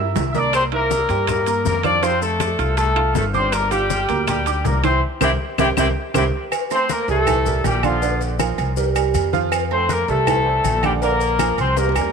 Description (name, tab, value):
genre	latin, salsa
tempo	160 BPM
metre	4/4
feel	straight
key	unclear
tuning	A4 = 440 Hz
part	clear upright piano	accompaniment	0.0-12.1 s	D3 to F6	-24 LUFS	right 13 dB	none
part	upright bass	bass	0.0-12.1 s	G1 to G2	-23 LUFS	left 1 dB	none
part	bongos and cowbell	percussion	0.2-12.1 s	none	-30 LUFS	left 16 dB	none
part	congas	percussion	0.2-12.1 s	none	-28 LUFS	left 12 dB	none
part	maracas	percussion	0.2-12.1 s	none	-35 LUFS	left 17 dB	none
part	timbales and agogo bells	percussion	0.2-12.1 s	none	-27 LUFS	right 14 dB	none
part	clear horn section	melody	0.3-12.1 s	F3 to E5	-20 LUFS	left 2 dB	tape echo
part	claves	percussion	0.5-12.1 s	none	-29 LUFS	left 14 dB	none
room	light reverb, small room ambience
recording	1960s-style stereo with parts hard left and right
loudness	-16 LUFS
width	side -6 dB against mid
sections	0.0-6.5 A section; 6.5-12.1 B section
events	drum fill 0.0-0.5, 5.4-6.5, 11.8-12.1; band accent 5.0-6.5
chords	0.0 C7; 2.0 Fadd9; 3.5 Gm7; 5.0 C7; 6.5 Am7; 7.3 C7; 8.0 Bbadd9; 8.8 C5; 9.5 F; 10.3 C7; 11.0 Bbadd9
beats	0.16 | 0.54 0.91 1.28 1.66 | 2.03 2.40 2.78 3.15 | 3.53 3.90 4.28 4.65 | 5.03 5.40 5.77 6.15 | 6.52 6.90 7.27 7.65 | 8.02 8.40 8.77 9.15 | 9.52 9.90 10.27 10.64 | 11.02 11.39 11.77